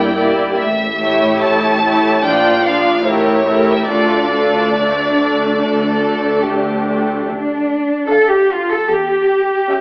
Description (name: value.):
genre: classical, slow romantic movement for string orchestra.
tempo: 69-76 BPM.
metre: 4/4.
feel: rubato.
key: D minor.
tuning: A4 = 437 Hz.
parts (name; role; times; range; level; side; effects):
rich chamber violin section; melody; 0.0-9.8 s; C#5 to A5; -20 LUFS; equal; none.
rich chamber violin section; second line; 0.0-9.8 s; D4 to F5; -20 LUFS; equal; none.
rich studio viola section; accompaniment; 0.0-9.8 s; F3 to E4; -20 LUFS; equal; none.
rich chamber cello section; bass; 0.0-9.8 s; G2 to A4; -21 LUFS; equal; none.
rich chamber double bass section; bass; 0.0-9.6 s; G1 to E2; -29 LUFS; equal; none.
room: moderate scoring stage reverb, RT60 1.7 s.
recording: AM radio sound.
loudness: -15 LUFS.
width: mono.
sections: 0.0-7.3 A section; 7.3-9.8 A section.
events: none.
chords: 0.0 Em7b5/G; 0.6 A7; 2.2 Bb; 3.1 A7b9; 3.9 Dm; 8.9 C#dim/E (rootless).